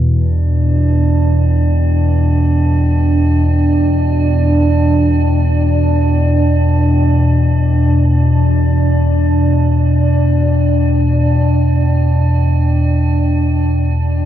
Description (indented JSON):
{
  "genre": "dark ambient drone",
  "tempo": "free time",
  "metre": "none",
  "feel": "none",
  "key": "unclear",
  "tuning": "A4 = 440 Hz",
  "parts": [
    { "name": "deep rumbling drone", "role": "drone", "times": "0.0-14.3 s", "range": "E2 to B2", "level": "-12 LUFS", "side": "equal", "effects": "built-in reverb" },
    { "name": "metallic inharmonic drone", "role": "texture", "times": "0.5-14.3 s", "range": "D4", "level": "-17 LUFS", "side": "right 2 dB", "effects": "chorus, built-in reverb" }
  ],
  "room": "wet huge ambient reverb, RT60 8.0 s",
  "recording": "dark, warm production",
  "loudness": "-11 LUFS",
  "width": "side -11 dB against mid",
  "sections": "0.0-14.3 A section",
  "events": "none",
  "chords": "0.1 Dsus2/E"
}